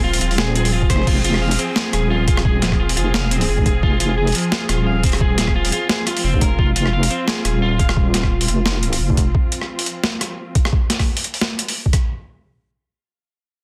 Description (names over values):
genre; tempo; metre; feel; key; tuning
half-time drum and bass; 174 BPM; 4/4; swing 56% on 16ths, half-time; F minor; A4 = 440 Hz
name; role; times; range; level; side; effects
muted studio cello section; sustained chords; 0.0-10.7 s; F3 to Ab4; -29 LUFS; equal; sidechain pumping
electric guitar at the edge of break-up; arpeggios; 0.0-8.0 s; F3 to F5; -26 LUFS; equal; digital delay
deep soft wobble bass; bass; 0.0-9.3 s; Eb1 to F1; -22 LUFS; equal; chorus
boom bap sampler-style drum kit; drums; 0.1-12.0 s; crash cymbal, hi-hat, rim click, snare drum; -24 LUFS; equal; overdrive
electronic kick drum; drums; 0.8-12.0 s; none; -20 LUFS; equal; overdrive
room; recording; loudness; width
digital ambience; dense, heavily limited modern master; -18 LUFS; mono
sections
0.0-12.1 A section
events
drop 0.0-12.1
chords
0.0 Fm